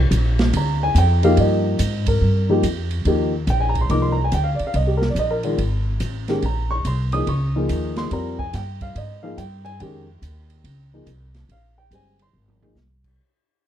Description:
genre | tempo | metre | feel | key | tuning
modal jazz | 142 BPM | 4/4 | swing 65% on 8ths | unclear | A4 = 435 Hz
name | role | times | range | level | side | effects
upright bass | bass | 0.0-13.2 s | G1 to Ab2 | -20 LUFS | equal | none
open jazz drum kit | drums | 0.1-13.1 s | crash cymbal, hi-hat, kick drum, ride cymbal, snare drum, toms | -29 LUFS | right 2 dB | none
dark upright piano | accompaniment | 0.6-12.8 s | Eb3 to Eb6 | -22 LUFS | left 1 dB | none
room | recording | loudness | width
light reverb | dark, warm production | -18 LUFS | side -10 dB against mid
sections
0.0-13.2 A section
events
fade-out 0.0-13.2; drum fill 12.3-12.8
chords
0.0 Cm11; 6.4 Bbm11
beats
0.12 0.54 0.96 | 1.38 1.80 2.22 2.64 | 3.06 3.48 3.90 4.33 | 4.75 5.17 5.59 6.01 | 6.43 6.85 7.28 7.70 | 8.12 8.54 8.96 9.38 | 9.80 10.23 10.65 11.07 | 11.49 11.92 12.34 12.76

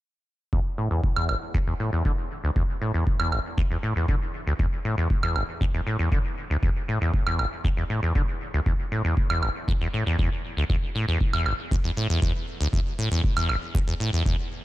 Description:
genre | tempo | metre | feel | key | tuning
acid house | 118 BPM | 4/4 | straight | unclear | A4 = 439 Hz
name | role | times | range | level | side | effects
acid bass, saw | riff | 0.5-14.4 s | E1 to D3 | -26 LUFS | equal | tube saturation, wide subtle chorus, tape echo
electronic kick drum | drums | 0.5-14.4 s | none | -25 LUFS | equal | none
woodblock | drums | 1.2-13.6 s | none | -28 LUFS | right 2 dB | none
room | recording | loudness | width
little or no reverb | none | -23 LUFS | side -16 dB against mid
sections
0.5-14.6 A section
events
none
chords
none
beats
| 0.53 1.04 1.54 2.05 | 2.56 3.07 3.58 4.09 | 4.60 5.10 5.61 6.12 | 6.63 7.14 7.65 8.15 | 8.66 9.17 9.68 10.19 | 10.70 11.21 11.71 12.22 | 12.73 13.24 13.75 14.26

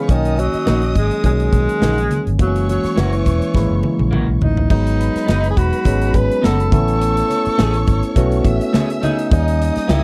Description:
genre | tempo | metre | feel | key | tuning
lush 1970s-style soul | 104 BPM | 4/4 | swing 54% on 16ths | unclear | A4 = 442 Hz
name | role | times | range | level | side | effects
mellow tenor saxophone | melody | 0.0-10.0 s | C#3 to B4 | -23 LUFS | equal | none
warm studio string section | second line | 0.0-10.0 s | B4 to E6 | -32 LUFS | equal | none
barky tine electric piano | accompaniment | 0.0-10.0 s | D#3 to F#4 | -24 LUFS | equal | phaser
vintage muted fingered electric bass | bass | 0.1-10.0 s | E1 to D#2 | -21 LUFS | equal | none
modern studio drum kit | drums | 0.1-10.0 s | crash cymbal, hi-hat, kick drum, snare drum, toms | -20 LUFS | equal | none
congas | percussion | 0.4-10.0 s | none | -27 LUFS | equal | none
electric guitar through a small old amp | riff | 0.7-10.0 s | A3 to G#4 | -27 LUFS | equal | lush chorus
room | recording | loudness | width
little or no reverb | dry, close 1970s-style studio recording | -17 LUFS | mono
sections
0.0-4.7 A section; 4.7-10.0 B section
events
drum fill 3.5-4.7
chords
0.1 Bmaj7; 2.4 F#7; 4.7 G#m7; 6.7 Amaj7; 9.3 D#7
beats
| 0.09 0.67 1.24 1.82 | 2.40 2.97 3.55 4.13 | 4.70 5.28 5.86 6.43 | 7.01 7.58 8.16 8.74 | 9.31 9.89

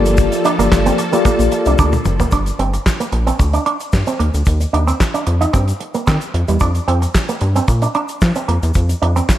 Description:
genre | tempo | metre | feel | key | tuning
early-eighties boogie funk | 112 BPM | 4/4 | straight | G minor | A4 = 437 Hz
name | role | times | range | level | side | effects
mellow tine electric piano | accompaniment | 0.0-1.9 s | Bb3 to D5 | -17 LUFS | left 3 dB | medium stereo tremolo
string machine, violins | sustained chords | 0.0-2.3 s | F3 to A4 | -22 LUFS | left 1 dB | ensemble chorus
rubbery square bass | bass | 0.0-9.2 s | F#1 to F3 | -16 LUFS | equal | none
damped 70s drum kit | drums | 0.1-9.4 s | handclaps, hi-hat, kick drum, snare drum, toms | -18 LUFS | equal | none
tube shaker | percussion | 0.1-9.4 s | none | -33 LUFS | left 5 dB | none
electric guitar with an envelope filter | riff | 0.3-9.3 s | G3 to Eb4 | -20 LUFS | right 4 dB | lush chorus
room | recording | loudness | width
light reverb, studio ambience | none | -13 LUFS | side -13 dB against mid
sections
0.0-2.3 A section; 2.3-9.4 B section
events
drum fill 1.8-2.3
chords
0.0 Gm9; 2.3 Gm; 4.2 Eb6; 6.6 Fsus24; 8.5 Bb (rootless)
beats
| 0.18 0.72 1.25 1.79 | 2.33 2.86 3.40 3.93 | 4.47 5.00 5.54 6.08 | 6.61 7.15 7.68 8.22 | 8.75 9.29

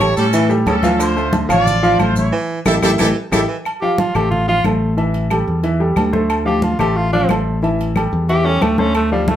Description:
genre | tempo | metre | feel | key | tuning
latin, salsa | 181 BPM | 4/4 | straight | unclear | A4 = 441 Hz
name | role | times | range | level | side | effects
bright trumpet section | melody | 0.0-3.4 s | C#4 to D5 | -20 LUFS | right 1 dB | plate reverb
clear concert grand piano | accompaniment | 0.0-9.4 s | E3 to F5 | -19 LUFS | equal | none
modern bright fingered electric bass | bass | 0.0-9.4 s | A1 to A2 | -19 LUFS | equal | none
agogo bells and timbales | percussion | 0.0-9.4 s | none | -25 LUFS | right 2 dB | none
claves | percussion | 0.0-9.1 s | none | -29 LUFS | left 3 dB | none
congas | percussion | 0.0-9.4 s | none | -22 LUFS | equal | none
maracas | percussion | 0.0-3.4 s | none | -33 LUFS | left 4 dB | none
warm baritone saxophone | second line | 0.2-3.6 s | C#3 to G3 | -23 LUFS | right 3 dB | none
warm tenor saxophone | melody | 3.8-9.4 s | G3 to G4 | -18 LUFS | equal | plate reverb
room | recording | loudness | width
wet studio ambience, RT60 0.5 s | heard from further back in the room | -14 LUFS | side -11 dB against mid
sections
0.0-3.7 A section; 3.7-9.4 B section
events
band accent 2.3-3.7; drum fill 3.0-3.7; tenor saxophone solo 3.7-9.4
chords
0.0 A7; 1.0 Dm7; 2.3 A7(no3); 3.7 Fadd9; 5.0 A5; 6.3 Dm7; 7.6 A5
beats
0.01 0.34 0.67 | 1.00 1.33 1.67 2.00 | 2.33 2.66 2.99 3.32 | 3.65 3.98 4.32 4.65 | 4.98 5.31 5.64 5.97 | 6.30 6.63 6.96 7.29 | 7.62 7.96 8.29 8.62 | 8.95 9.28

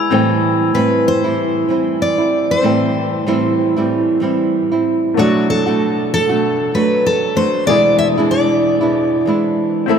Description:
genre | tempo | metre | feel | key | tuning
acoustic pop | 95 BPM | 4/4 | swing 60% on 16ths | unclear | A4 = 439 Hz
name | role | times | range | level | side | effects
clear upright piano | accompaniment | 0.0-10.0 s | A3 to G5 | -24 LUFS | left 10 dB | none
nylon-string guitar | accompaniment | 0.0-10.0 s | E2 to F#4 | -15 LUFS | right 2 dB | none
picked steel-string acoustic guitar | melody | 0.7-9.8 s | F#4 to E5 | -18 LUFS | left 1 dB | none
room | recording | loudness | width
wet cathedral reverb, RT60 6.2 s | in a vast, echoing space | -13 LUFS | side -7 dB against mid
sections
0.0-5.2 A section; 5.2-10.0 B section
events
none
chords
0.1 Am7; 5.2 Bm7; 7.7 E7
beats
| 0.12 0.75 1.38 2.01 | 2.64 3.27 3.90 4.53 | 5.16 5.79 6.42 7.05 | 7.68 8.31 8.94 9.57

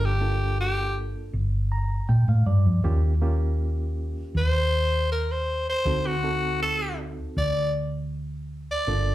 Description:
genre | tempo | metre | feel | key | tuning
straight-eighth soul blues | 80 BPM | 4/4 | straight | unclear | A4 = 440 Hz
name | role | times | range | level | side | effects
growling tenor saxophone | melody | 0.0-9.1 s | F#4 to D5 | -26 LUFS | left 1 dB | slapback echo
barky reed electric piano | accompaniment | 0.0-9.1 s | Bb3 to Bb5 | -34 LUFS | right 3 dB | fast tremolo, slapback echo
hollow-body short-scale fingered electric bass | bass | 0.0-9.1 s | G1 to Bb2 | -24 LUFS | equal | none
room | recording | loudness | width
little or no reverb | live gig heard through the venue's PA, club reverb | -22 LUFS | side -14 dB against mid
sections
0.0-9.1 A section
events
reed electric piano fill 1.3-2.8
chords
0.0 Gm7; 2.8 Eb7; 5.9 D7b9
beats
0.59 1.34 2.09 | 2.85 3.60 4.35 5.11 | 5.86 6.61 7.37 8.12 | 8.88

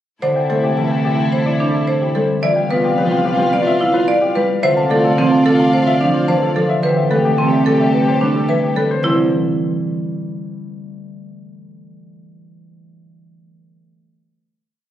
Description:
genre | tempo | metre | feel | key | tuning
classical, minimalist pattern music | 109 BPM | 4/4 | straight | C major | A4 = 443 Hz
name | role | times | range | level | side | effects
clear concert grand piano | melody | 0.2-9.3 s | G4 to A5 | -23 LUFS | left 6 dB | none
warm soprano saxophone | second line | 0.2-8.8 s | E4 to G4 | -22 LUFS | equal | none
concert harp | accompaniment | 0.2-11.3 s | D3 to B3 | -20 LUFS | equal | none
rich studio string section | sustained chords | 0.2-8.9 s | E4 to F5 | -26 LUFS | left 4 dB | none
marimba with medium hard mallets | arpeggios | 0.2-9.3 s | C4 to D5 | -18 LUFS | right 2 dB | none
warm cello | bass | 0.2-9.3 s | C2 | -24 LUFS | right 2 dB | none
room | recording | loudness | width
wet recital hall reverb, RT60 1.6 s | recorded on a phone in the room, club reverb | -14 LUFS | side -12 dB against mid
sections
0.2-9.0 A section; 9.0-11.2 final chord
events
none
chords
0.2 C6; 2.4 G7/C; 4.6 Dm7/C; 6.8 Am9/C; 9.0 C6 (rootless)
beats
| 0.23 0.78 1.33 1.88 | 2.43 2.98 3.53 4.08 | 4.63 5.18 5.73 6.28 | 6.83 7.38 7.93 8.48 | 9.04 9.59 10.14 10.69

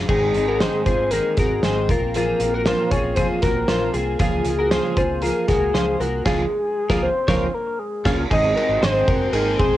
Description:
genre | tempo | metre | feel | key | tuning
jangly indie pop | 117 BPM | 4/4 | straight | unclear | A4 = 440 Hz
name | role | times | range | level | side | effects
direct-recorded clean electric guitar | arpeggios | 0.0-9.8 s | Db4 to Db5 | -25 LUFS | left 3 dB | analog chorus
vintage muted fingered electric bass | bass | 0.0-9.8 s | Gb1 to Db2 | -28 LUFS | equal | none
soft octave-layered synth lead | melody | 0.1-9.8 s | Ab4 to Eb5 | -22 LUFS | left 1 dB | chorus, cassette tape
fingerpicked twelve-string acoustic guitar | accompaniment | 0.1-9.8 s | Ab2 to Ab4 | -26 LUFS | right 5 dB | none
loose indie drum kit | drums | 0.1-9.7 s | crash cymbal, hi-hat, kick drum, ride cymbal, snare drum | -23 LUFS | equal | cassette tape
rich studio violin section | second line | 8.3-9.8 s | C4 | -30 LUFS | left 1 dB | analog delay
room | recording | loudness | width
moderate small room reverb, RT60 0.5 s | home recording on cassette | -18 LUFS | side -14 dB against mid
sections
0.1-8.3 A section; 8.3-9.8 B section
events
band accent 6.3-8.3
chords
0.1 Ab; 1.9 Bbsus2; 4.2 Db6; 8.3 Ab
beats
| 0.09 0.61 1.12 1.64 | 2.15 2.66 3.18 3.69 | 4.21 4.72 5.23 5.75 | 6.26 6.78 7.29 7.80 | 8.32 8.83 9.34

